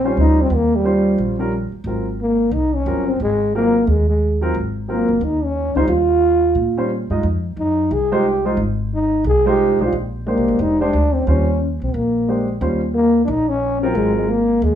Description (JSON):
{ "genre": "jazz, small-group swing and bop", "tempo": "178 BPM", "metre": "4/4", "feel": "swing 62% on 8ths", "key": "Eb mixolydian", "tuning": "A4 = 439 Hz", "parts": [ { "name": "growling trombone", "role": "melody", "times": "0.0-14.8 s", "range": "G3 to Ab4", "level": "-17 LUFS", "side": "equal", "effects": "none" }, { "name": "dark baby grand piano", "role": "accompaniment", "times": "0.0-14.3 s", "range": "Gb3 to Eb5", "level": "-21 LUFS", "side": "right 1 dB", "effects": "none" }, { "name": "upright bass", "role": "bass", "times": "0.0-14.8 s", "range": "F1 to Bb2", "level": "-21 LUFS", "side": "equal", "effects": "none" } ], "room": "moderate club reverb, RT60 0.5 s", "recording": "studio reverb", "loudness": "-15 LUFS", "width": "side -10 dB against mid", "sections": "0.0-12.6 A section; 12.6-14.8 A section", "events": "none", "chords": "0.0 Eb13; 1.9 Ab13; 5.9 Ebadd9; 7.2 Fm7; 9.9 Bb13; 11.3 Eb13; 11.9 Bb13; 12.6 Eb13; 14.0 Ab13", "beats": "0.17 | 0.51 0.84 1.18 1.51 | 1.85 2.19 2.52 2.86 | 3.20 3.53 3.87 4.20 | 4.54 4.88 5.21 5.55 | 5.89 6.22 6.56 6.89 | 7.23 7.57 7.90 8.24 | 8.58 8.91 9.25 9.59 | 9.92 10.26 10.59 10.93 | 11.27 11.60 11.94 12.27 | 12.61 12.95 13.28 13.62 | 13.95 14.29 14.62" }